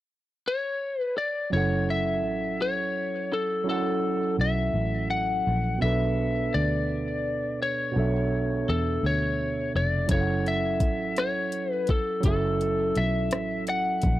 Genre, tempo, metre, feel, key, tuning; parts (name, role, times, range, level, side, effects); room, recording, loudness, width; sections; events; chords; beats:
slow six-eight R&B; 56 BPM (dotted quarters); 6/8; straight; A4 = 440 Hz
lightly driven lead guitar; melody; 0.5-14.2 s; A4 to F#5; -28 LUFS; left 3 dB
overdriven tine electric piano; accompaniment; 1.5-14.2 s; B2 to F#5; -29 LUFS; right 4 dB
vintage muted fingered electric bass; bass; 1.5-14.2 s; E#1 to E2; -28 LUFS; equal
smooth R&B drum kit; drums; 10.1-14.2 s; hi-hat, kick drum, rim click; -25 LUFS; equal
digital ambience; dry, close 1970s-style studio recording; -24 LUFS; side -14 dB against mid
0.0-1.5 A section; 1.5-14.2 B section
0.0 N.C.; 1.5 F#m7; 5.8 Bm9; 10.1 F#m7
0.45 | 1.52 2.59 | 3.66 4.74 | 5.81 6.88 | 7.95 9.02 | 10.09 11.16 | 12.23 13.31